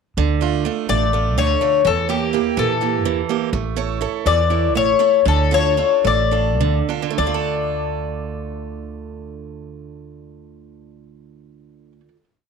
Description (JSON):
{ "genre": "greek folk", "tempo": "200-250 BPM (eighths)", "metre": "7/8", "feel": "straight", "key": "D harmonic minor", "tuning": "A4 = 442 Hz", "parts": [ { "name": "picked steel-string acoustic guitar", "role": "accompaniment", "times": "0.2-12.2 s", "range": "D3 to C#5", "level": "-23 LUFS", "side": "right 13 dB", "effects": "none" }, { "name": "upright bass", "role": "bass", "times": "0.2-12.1 s", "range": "A1 to Bb2", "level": "-23 LUFS", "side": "right 1 dB", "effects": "none" }, { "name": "Greek bouzouki", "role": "melody", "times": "0.9-12.1 s", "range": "G4 to D5", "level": "-18 LUFS", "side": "left 10 dB", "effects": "slapback echo" } ], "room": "wet spring reverb, RT60 1.3 s, studio reverb", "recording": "1960s-style stereo with parts hard left and right", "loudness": "-16 LUFS", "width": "side -5 dB against mid", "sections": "0.2-7.2 A section; 7.2-11.4 final chord", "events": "slowing down 3.5-7.2", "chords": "0.2 Dm; 1.9 Edim; 3.5 A; 5.3 Dm", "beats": "| 0.17 0.41 0.65 0.89 1.13 1.37 1.61 | 1.85 2.10 2.33 2.57 2.81 3.05 3.29 | 3.53 3.77 4.02 4.26 4.50 4.75 5.00 | 5.26 5.52 5.78 6.05 6.32 6.61 6.89 | 7.19 7.48 7.78 8.08 8.38 8.68 8.98 | 9.28 9.58 9.88 10.18 10.48 10.78 11.08" }